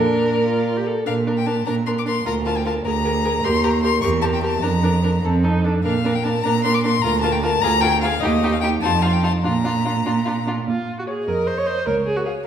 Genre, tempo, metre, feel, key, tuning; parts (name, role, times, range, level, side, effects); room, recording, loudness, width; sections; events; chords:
quick classical-period movement for string quartet; 100 BPM (dotted quarters); 6/8; straight; Bb major; A4 = 440 Hz
clear violin; melody; 0.0-12.4 s; Db5 to D6; -23 LUFS; left 6 dB
rich violin; second line; 0.0-12.4 s; F4 to F5; -24 LUFS; left 1 dB
rich viola; accompaniment; 0.0-12.3 s; C4 to Db5; -26 LUFS; right 2 dB
clear cello; bass; 0.0-12.3 s; Db2 to Bb2; -21 LUFS; right 3 dB
wet recital hall reverb, RT60 1.5 s; heard from further back in the room; -17 LUFS; side -9 dB against mid
0.0-1.1 A section; 1.1-10.7 B section; 10.7-12.5 B section
0.0 Bb; 2.3 Bb/D; 2.9 Bb7/D; 3.4 Eb; 4.0 Edim; 4.6 Bb/F; 5.2 F; 5.8 Bb; 7.0 Bb/D; 8.2 Eb; 8.8 F7; 9.4 Bb; 10.7 Bbm; 11.9 Db